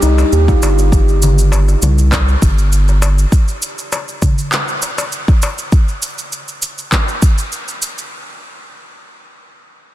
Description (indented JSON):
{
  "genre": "organic downtempo",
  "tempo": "100 BPM",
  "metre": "4/4",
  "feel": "swing 53% on 16ths",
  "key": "C minor",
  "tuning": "A4 = 445 Hz",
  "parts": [
    { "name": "handpan", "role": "arpeggios", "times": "0.0-0.9 s", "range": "Eb4 to G4", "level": "-19 LUFS", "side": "right 1 dB", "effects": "low-pass filter, ping-pong delay" },
    { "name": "round analog bass", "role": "bass", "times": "0.0-3.3 s", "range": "G1 to Eb2", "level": "-12 LUFS", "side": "equal", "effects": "sidechain pumping" },
    { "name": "electronic shaker and handclaps", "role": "drums", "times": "0.0-8.1 s", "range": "none", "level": "-21 LUFS", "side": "right 1 dB", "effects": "none" },
    { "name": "darbuka", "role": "percussion", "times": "0.0-5.7 s", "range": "none", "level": "-24 LUFS", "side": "left 2 dB", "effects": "none" },
    { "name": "electronic kick drum", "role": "drums", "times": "0.5-7.3 s", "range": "none", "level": "-12 LUFS", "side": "equal", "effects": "none" }
  ],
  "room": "light reverb",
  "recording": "dense, heavily limited modern master",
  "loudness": "-12 LUFS",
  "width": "side -14 dB against mid",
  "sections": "0.0-8.1 A section",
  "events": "none",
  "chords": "0.0 C5"
}